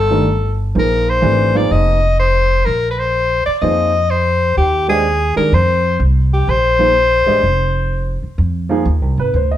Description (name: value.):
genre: modal jazz.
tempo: 126 BPM.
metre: 4/4.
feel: swing 67% on 8ths.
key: unclear.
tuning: A4 = 440 Hz.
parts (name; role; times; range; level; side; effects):
breathy soprano saxophone; melody; 0.0-8.2 s; G4 to Eb5; -15 LUFS; left 2 dB; plate reverb.
upright bass; bass; 0.0-9.6 s; F1 to F2; -16 LUFS; equal; none.
warm grand piano; accompaniment; 0.1-9.6 s; Eb3 to Eb5; -18 LUFS; right 3 dB; none.
room: wet studio reverb, RT60 0.6 s.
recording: heard from further back in the room.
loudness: -12 LUFS.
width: side -12 dB against mid.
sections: 0.0-8.4 A section; 8.4-9.6 B section.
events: none.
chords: 0.0 C7sus2 (rootless); 0.8 Bb9sus4; 8.4 Fm7.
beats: 0.28 | 0.75 1.23 1.71 2.18 | 2.66 3.14 3.62 4.09 | 4.57 5.04 5.52 6.00 | 6.47 6.95 7.42 7.90 | 8.38 8.85 9.33.